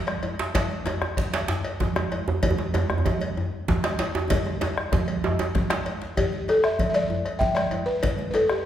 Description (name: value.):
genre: west african traditional, West African drum ensemble.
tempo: 128 BPM (dotted quarters).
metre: 12/8.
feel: straight.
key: G major pentatonic.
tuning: A4 = 438 Hz.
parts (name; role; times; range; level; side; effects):
bombo; percussion; 0.1-8.6 s; none; -29 LUFS; left 1 dB; none.
congas; percussion; 0.1-8.3 s; none; -31 LUFS; right 4 dB; none.
cowbell; percussion; 0.1-8.5 s; none; -33 LUFS; left 2 dB; none.
djembe; percussion; 0.1-8.5 s; none; -33 LUFS; left 3 dB; none.
djembe; percussion; 0.4-5.8 s; none; -27 LUFS; right 3 dB; none.
balafon; melody; 6.2-8.7 s; G4 to G5; -23 LUFS; left 1 dB; none.
room: wet recital hall reverb, RT60 1.5 s.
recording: recorded in a church or concert hall.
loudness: -22 LUFS.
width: side -11 dB against mid.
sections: 0.0-6.2 A section; 6.2-8.7 B section.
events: drum fill 4.3-6.2.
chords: none.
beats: 0.08 | 0.55 1.02 1.49 1.96 | 2.43 2.90 3.37 3.83 | 4.30 4.77 5.24 5.70 | 6.17 6.63 7.10 7.56 | 8.03 8.49.